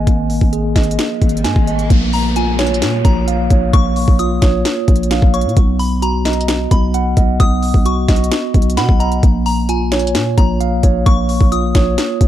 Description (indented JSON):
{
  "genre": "hip hop, trap",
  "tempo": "131 BPM",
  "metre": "4/4",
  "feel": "half-time",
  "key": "Bb phrygian",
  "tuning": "A4 = 442 Hz",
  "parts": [
    { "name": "mellow tine electric piano", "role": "arpeggios", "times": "0.0-12.3 s", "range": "Bb3 to Ab5", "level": "-18 LUFS", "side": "right 1 dB", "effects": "medium stereo tremolo, low-pass filter, ping-pong delay" },
    { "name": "growling 808-style bass", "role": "bass", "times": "0.0-12.3 s", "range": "Ab1 to B2", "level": "-17 LUFS", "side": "equal", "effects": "none" },
    { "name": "trap drum kit", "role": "drums", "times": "0.1-12.3 s", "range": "hi-hat, kick drum, snare drum", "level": "-14 LUFS", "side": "equal", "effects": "none" },
    { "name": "riser and downlifter", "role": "sound effects", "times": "1.0-5.6 s", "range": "none", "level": "-27 LUFS", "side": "equal", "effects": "none" },
    { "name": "delicate synth tine bell", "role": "second line", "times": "2.1-12.3 s", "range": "Ab5 to Eb6", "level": "-23 LUFS", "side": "left 4 dB", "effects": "chorus, ping-pong delay" }
  ],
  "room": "little or no reverb",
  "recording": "dark, warm production",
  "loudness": "-12 LUFS",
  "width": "side -12 dB against mid",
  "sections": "0.0-1.9 A section; 1.9-12.3 B section",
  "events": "riser 1.0-1.9",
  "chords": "0.0 Absus2; 1.9 Bbm; 5.6 B; 9.2 Bbm",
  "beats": "| 0.07 0.53 0.99 1.45 | 1.90 2.36 2.82 3.28 | 3.73 4.19 4.65 5.11 | 5.57 6.03 6.48 6.94 | 7.40 7.86 8.31 8.77 | 9.23 9.69 10.15 10.61 | 11.06 11.52 11.98"
}